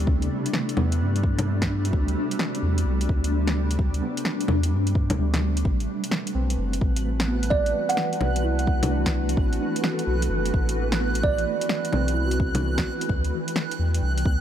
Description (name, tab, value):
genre	future garage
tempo	129 BPM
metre	4/4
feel	swing 66% on 16ths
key	A dorian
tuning	A4 = 440 Hz
part	muted felt-like synth keys	accompaniment	0.0-14.4 s	G3 to A4	-32 LUFS	right 3 dB	chorus, sidechain pumping, tape echo
part	granular cloud pad	sustained chords	0.0-14.4 s	C3 to G5	-29 LUFS	left 1 dB	built-in reverb, sidechain pumping
part	soft dub sub bass	bass	0.0-14.4 s	F#1 to G2	-25 LUFS	equal	tube saturation, sidechain pumping
part	electronic kick drum	drums	0.1-14.4 s	none	-24 LUFS	equal	none
part	deep house drum kit	drums	0.2-14.2 s	bongos, hi-hat, snare drum	-28 LUFS	left 1 dB	none
part	backwards swelling texture	texture	6.7-14.4 s	F#6	-34 LUFS	right 2 dB	built-in reverb
part	kalimba	melody	7.5-11.5 s	D5 to F#5	-28 LUFS	right 4 dB	vintage 12-bit sampler grit, analog delay
room	light reverb, digital ambience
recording	none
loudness	-22 LUFS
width	side -10 dB against mid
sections	0.0-14.4 A section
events	kick drops out 5.2-5.7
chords	0.0 D7sus4; 5.7 Am69; 13.1 D7sus4